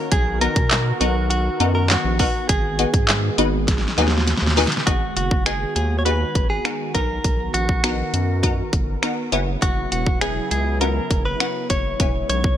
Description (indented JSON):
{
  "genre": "dance-pop",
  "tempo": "101 BPM",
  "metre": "4/4",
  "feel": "straight",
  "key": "G# minor",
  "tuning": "A4 = 436 Hz",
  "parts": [
    { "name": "direct-recorded clean electric guitar", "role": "melody", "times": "0.0-12.6 s", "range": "F#4 to C#5", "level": "-25 LUFS", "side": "equal", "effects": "digital delay" },
    { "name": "wavetable chord stab", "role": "accompaniment", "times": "0.0-12.4 s", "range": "B3 to B4", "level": "-24 LUFS", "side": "left 3 dB", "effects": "analog chorus, sidechain pumping" },
    { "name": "warm analog pad", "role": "sustained chords", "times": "0.0-12.6 s", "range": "C#3 to A#4", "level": "-30 LUFS", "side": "equal", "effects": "chorus, sidechain pumping" },
    { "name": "round analog bass", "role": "bass", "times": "0.1-12.6 s", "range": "E1 to B2", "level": "-23 LUFS", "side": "equal", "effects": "sidechain pumping" },
    { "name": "pop drum kit", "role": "drums", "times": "0.1-12.6 s", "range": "finger snaps, handclaps, hi-hat, kick drum, snare drum", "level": "-21 LUFS", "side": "equal", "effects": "none" }
  ],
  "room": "digital ambience",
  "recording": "bright 1980s-style digital production",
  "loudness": "-18 LUFS",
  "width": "side -10 dB against mid",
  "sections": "0.0-4.9 A section; 4.9-12.6 B section",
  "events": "drum fill 3.7-4.9",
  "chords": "0.1 Bmaj7; 2.5 G#m7; 6.9 Bmaj7; 9.3 F#7sus4; 12.0 C#m7/E",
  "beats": "| 0.12 0.71 1.30 1.90 | 2.49 3.09 3.68 4.27 | 4.87 5.46 6.06 6.65 | 7.25 7.84 8.43 9.03 | 9.62 10.21 10.81 11.40 | 12.00"
}